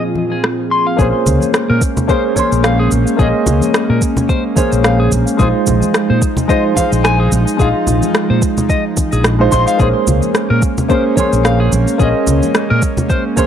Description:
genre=sunset chillout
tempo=109 BPM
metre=4/4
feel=swing 56% on 16ths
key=Bb minor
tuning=A4 = 440 Hz
part: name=warm concert grand piano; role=accompaniment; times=0.0-13.5 s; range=Bb2 to C6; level=-17 LUFS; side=moving between left 4 dB and right 3 dB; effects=auto-pan, tape echo
part: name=airy breathy pad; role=sustained chords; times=0.0-13.5 s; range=Bb2 to Ab4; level=-19 LUFS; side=right 2 dB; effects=chorus
part: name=clean electric guitar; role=arpeggios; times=0.0-13.5 s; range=Ab4 to C6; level=-21 LUFS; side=left 3 dB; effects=tape echo
part: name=congas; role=percussion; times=0.2-13.5 s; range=none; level=-21 LUFS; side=left 1 dB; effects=none
part: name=electronic rim click and shaker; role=drums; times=0.4-13.5 s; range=none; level=-19 LUFS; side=equal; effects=overdrive
part: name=mellow fretless electric bass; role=bass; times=1.0-12.8 s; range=Bb1 to Bb2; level=-14 LUFS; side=equal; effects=tube saturation, lush chorus
part: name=electronic kick drum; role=drums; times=1.0-13.5 s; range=none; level=-16 LUFS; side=equal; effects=overdrive
room=digital ambience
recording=dry, gritty hardware recording, transformer saturation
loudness=-11 LUFS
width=side -9 dB against mid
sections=1.0-13.5 A section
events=none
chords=0.0 Fm7/Bb; 1.0 Bbm9; 5.4 Fm7/Bb; 9.8 Bbm9

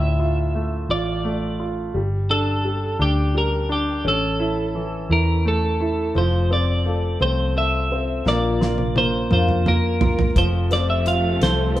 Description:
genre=six-eight pop ballad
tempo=57 BPM (dotted quarters)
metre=6/8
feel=straight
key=unclear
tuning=A4 = 440 Hz
part: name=twelve-string electric guitar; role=melody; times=0.0-11.8 s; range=G4 to F5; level=-24 LUFS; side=equal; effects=spring reverb
part: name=bright concert grand piano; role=accompaniment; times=0.0-11.8 s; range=A2 to A4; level=-25 LUFS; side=right 1 dB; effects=none
part: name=vintage muted fingered electric bass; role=bass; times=0.0-11.8 s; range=F1 to F2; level=-22 LUFS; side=equal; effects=none
part: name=fingerpicked steel-string acoustic guitar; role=arpeggios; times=6.1-11.8 s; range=Bb2 to Bb4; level=-28 LUFS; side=left 3 dB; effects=none
part: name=damped 70s drum kit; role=drums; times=8.3-11.8 s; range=hi-hat, kick drum, snare drum, toms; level=-22 LUFS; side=right 1 dB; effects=none
part: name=bright studio string section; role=sustained chords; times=10.4-11.8 s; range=C3 to A3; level=-27 LUFS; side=equal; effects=none
room=moderate studio reverb, RT60 0.6 s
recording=band playing live in one room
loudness=-18 LUFS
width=side -14 dB against mid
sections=0.0-6.2 A section; 6.2-11.8 B section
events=drum fill 8.3-10.4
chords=0.0 Dm; 1.9 G5; 4.0 A; 6.2 F; 8.3 Bb; 10.4 F

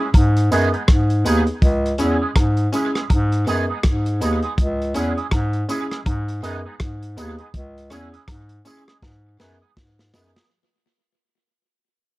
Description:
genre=roots reggae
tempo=81 BPM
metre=4/4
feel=swing 60% on 16ths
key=C# minor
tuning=A4 = 440 Hz
part: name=electric guitar with an envelope filter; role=accompaniment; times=0.0-10.4 s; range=G#3 to G#4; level=-27 LUFS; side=right 5 dB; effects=ensemble chorus, tape echo
part: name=warm bass clarinet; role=bass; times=0.1-10.3 s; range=C#2 to G#2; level=-20 LUFS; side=equal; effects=none
part: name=crunchy breakbeat drum kit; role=drums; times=0.1-10.5 s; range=hi-hat, kick drum, rim click, snare drum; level=-18 LUFS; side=equal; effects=none
part: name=woodblock and tambourine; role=percussion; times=0.1-10.3 s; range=none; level=-35 LUFS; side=right 2 dB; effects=none
part: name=warm upright piano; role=stabs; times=0.5-10.3 s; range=B3 to G#4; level=-25 LUFS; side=equal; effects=none
room=small room ambience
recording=dry, close 1970s-style studio recording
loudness=-17 LUFS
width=side -19 dB against mid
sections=0.0-10.5 A section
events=fade-out 0.0-10.5; drum fill 9.0-10.5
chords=0.1 G#m; 1.6 C#m; 3.1 G#m; 4.6 C#m; 6.1 G#m; 7.5 C#m; 9.0 G#m

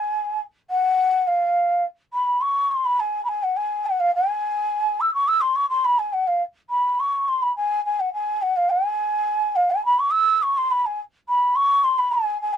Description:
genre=indian classical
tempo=105 BPM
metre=4/4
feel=straight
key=unclear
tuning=A4 = 440 Hz
part: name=mellow bansuri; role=solo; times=0.0-12.6 s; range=F5 to E6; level=-19 LUFS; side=equal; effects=none
room=light reverb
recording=dry, close 1970s-style studio recording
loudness=-19 LUFS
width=side -9 dB against mid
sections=0.0-12.6 A section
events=none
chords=none

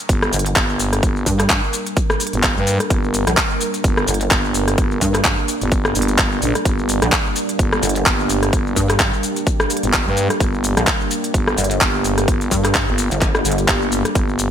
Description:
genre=bass house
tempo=128 BPM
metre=4/4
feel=swing 56% on 16ths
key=G minor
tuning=A4 = 440 Hz
part: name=deep dark ambient pad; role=sustained chords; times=0.3-14.5 s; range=G3 to Bb4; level=-24 LUFS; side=right 2 dB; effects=chorus, built-in reverb, sidechain pumping
part: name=growling FM bass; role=bass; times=0.1-14.5 s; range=G1 to G2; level=-20 LUFS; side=equal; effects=overdrive, sidechain pumping
part: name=electronic kick drum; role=drums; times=0.1-14.3 s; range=none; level=-20 LUFS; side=equal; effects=overdrive
part: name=garage drum kit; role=drums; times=0.1-14.5 s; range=handclaps, hi-hat, rim click, shaker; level=-20 LUFS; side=equal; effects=none
part: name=pulsing pluck wobble bass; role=bass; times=0.3-13.7 s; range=G1 to G2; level=-19 LUFS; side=equal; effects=chorus, overdrive, sidechain pumping
part: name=swell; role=sound effects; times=13.4-14.2 s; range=none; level=-26 LUFS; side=left 1 dB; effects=none
room=light reverb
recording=none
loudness=-15 LUFS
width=side -9 dB against mid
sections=0.0-14.5 A section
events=swell 13.4-14.2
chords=0.0 Gm

